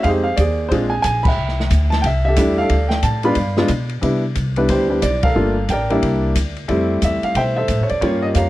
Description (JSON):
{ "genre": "jazz piano trio", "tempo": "181 BPM", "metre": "4/4", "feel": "swing 63% on 8ths", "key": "C major from 4.0 s", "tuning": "A4 = 439 Hz", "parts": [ { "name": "warm baby grand piano", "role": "melody", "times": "0.0-8.5 s", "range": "G3 to B5", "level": "-18 LUFS", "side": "equal", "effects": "none" }, { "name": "upright bass", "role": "bass", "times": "0.0-8.5 s", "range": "G1 to C3", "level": "-20 LUFS", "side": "equal", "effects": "none" }, { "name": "open jazz drum kit", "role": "drums", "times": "0.0-8.4 s", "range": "crash cymbal, hi-hat, kick drum, ride cymbal, snare drum", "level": "-25 LUFS", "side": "equal", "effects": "none" } ], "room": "little or no reverb", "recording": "dry, close 1970s-style studio recording", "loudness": "-15 LUFS", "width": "side -16 dB against mid", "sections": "0.0-4.0 A section; 4.0-8.5 B section", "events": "band accent 1.2, 5.2", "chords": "0.0 Fm7; 0.7 Bb9; 1.4 C6; 2.7 Bm7b5; 3.4 G7; 4.0 Cmaj9; 5.4 Gm9; 6.0 C9; 6.7 Fmaj7", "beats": "| 0.05 0.38 0.71 1.04 | 1.38 1.71 2.04 2.37 | 2.70 3.03 3.37 3.70 | 4.03 4.36 4.70 5.03 | 5.36 5.69 6.03 6.36 | 6.69 7.02 7.36 7.69 | 8.02 8.35" }